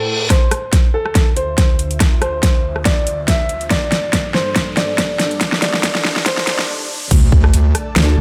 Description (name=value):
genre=heavy wobble dubstep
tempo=141 BPM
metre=4/4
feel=swing 54% on 16ths, half-time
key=D minor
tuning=A4 = 441 Hz
part: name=warm grand piano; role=melody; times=0.0-6.6 s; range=A4 to E5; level=-24 LUFS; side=equal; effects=digital delay
part: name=lush unison pad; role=sustained chords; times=0.0-8.2 s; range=D2 to A5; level=-30 LUFS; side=equal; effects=chorus, sidechain pumping
part: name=reverse cymbal, riser, swell and sub drop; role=sound effects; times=0.0-8.2 s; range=none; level=-28 LUFS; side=equal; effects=none
part: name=big-room dance drum kit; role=drums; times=0.3-8.1 s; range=crash cymbal, hi-hat, rim click, snare drum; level=-20 LUFS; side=equal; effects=overdrive
part: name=electronic kick drum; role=drums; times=0.3-7.4 s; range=none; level=-17 LUFS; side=equal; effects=overdrive
part: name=wobble bass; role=bass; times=7.1-8.2 s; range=F1 to D2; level=-15 LUFS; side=equal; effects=chorus, overdrive
part: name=vowel-sweep wobble bass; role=bass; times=8.0-8.2 s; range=D2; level=-15 LUFS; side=equal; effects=chorus, overdrive
room=light reverb, digital ambience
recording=high-pass filter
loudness=-16 LUFS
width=mono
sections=0.3-7.1 A section; 7.1-8.2 B section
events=reverse cymbal 0.0-0.3; build-up 0.3-7.1; drum fill 0.3-6.7; filter sweep on analog synth pad 0.3-7.1; filter sweep 0.3-7.1; swell 6.3-7.1; stop 6.7-7.1; drop 7.1-8.2; impact 7.1-8.2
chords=0.3 Dm7; 3.7 Gsus2; 7.1 D5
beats=| 0.30 0.73 1.15 1.58 | 2.00 2.43 2.85 3.28 | 3.71 4.13 4.56 4.98 | 5.41 5.83 6.26 6.68 | 7.11 7.54 7.96